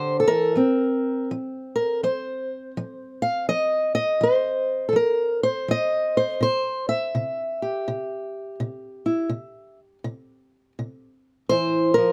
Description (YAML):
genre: acoustic country blues, solo or duo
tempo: 82 BPM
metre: 4/4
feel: swing 63% on 8ths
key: C major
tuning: A4 = 440 Hz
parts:
  - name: fingerpicked old ladder-braced acoustic guitar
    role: solo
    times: 0.0-12.1 s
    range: C3 to F5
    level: -24 LUFS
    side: equal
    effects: none
room: little or no reverb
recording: close, detailed microphones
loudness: -24 LUFS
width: mono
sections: 0.0-12.1 A section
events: none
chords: 0.0 C; 0.6 F5; 6.4 C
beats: | 0.56 1.29 2.03 2.76 | 3.49 4.22 4.95 5.68 | 6.41 7.14 7.86 8.59 | 9.32 10.05 10.78 11.51